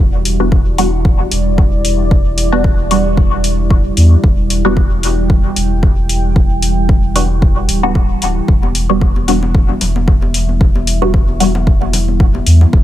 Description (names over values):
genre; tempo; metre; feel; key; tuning
dub techno; 113 BPM; 4/4; swing 55% on 16ths; E minor; A4 = 440 Hz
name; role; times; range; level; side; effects
deep dark ambient pad; sustained chords; 0.0-12.8 s; G3 to G5; -20 LUFS; right 1 dB; chorus, built-in reverb, sidechain pumping
warm sub bass; bass; 0.0-12.8 s; D1 to E2; -14 LUFS; equal; sidechain pumping
electronic hi-hat; drums; 0.3-12.6 s; none; -19 LUFS; left 2 dB; none
filtered dub chord stab; stabs; 0.4-11.5 s; G3 to F#4; -18 LUFS; equal; phaser, sidechain pumping, dub echo
electronic kick drum; drums; 0.5-12.8 s; none; -12 LUFS; equal; none
congas; percussion; 8.6-12.7 s; none; -25 LUFS; left 2 dB; sidechain pumping on perc, dub echo
room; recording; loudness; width
little or no reverb; echo-heavy mix; -10 LUFS; side -13 dB against mid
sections
0.0-12.8 A section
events
none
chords
0.0 Em7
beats
0.52 1.05 1.58 | 2.11 2.64 3.17 3.71 | 4.24 4.77 5.30 5.83 | 6.36 6.89 7.42 7.95 | 8.48 9.02 9.55 10.08 | 10.61 11.14 11.67 12.20 | 12.73